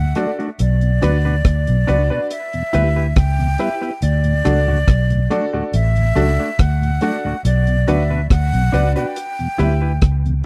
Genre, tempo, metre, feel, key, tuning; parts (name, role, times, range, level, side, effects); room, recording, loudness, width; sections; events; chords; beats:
roots reggae; 70 BPM; 4/4; straight; D major; A4 = 442 Hz
breathy jazz flute; melody; 0.0-10.2 s; D5 to G5; -27 LUFS; equal; dub echo
mellow tonewheel organ; accompaniment; 0.0-10.3 s; D2 to E4; -26 LUFS; equal; chorus vibrato, slow rotary speaker
vintage muted fingered electric bass; bass; 0.0-10.4 s; A1 to D2; -18 LUFS; equal
semi-hollow electric guitar; accompaniment; 0.2-9.9 s; A3 to B4; -28 LUFS; equal; dub echo
clear upright piano; stabs; 0.2-9.8 s; D4 to E5; -25 LUFS; equal
deep reggae drum kit; drums; 0.2-10.4 s; hi-hat, kick drum, rim click; -19 LUFS; equal
little or no reverb; dry, close 1970s-style studio recording; -17 LUFS; mono
0.0-10.5 A section
0.0 D; 0.6 Bm; 2.3 Em; 4.0 D; 7.4 Bm; 9.2 Em
| 0.59 1.45 2.30 3.16 | 4.02 4.88 5.73 6.59 | 7.45 8.30 9.16 10.02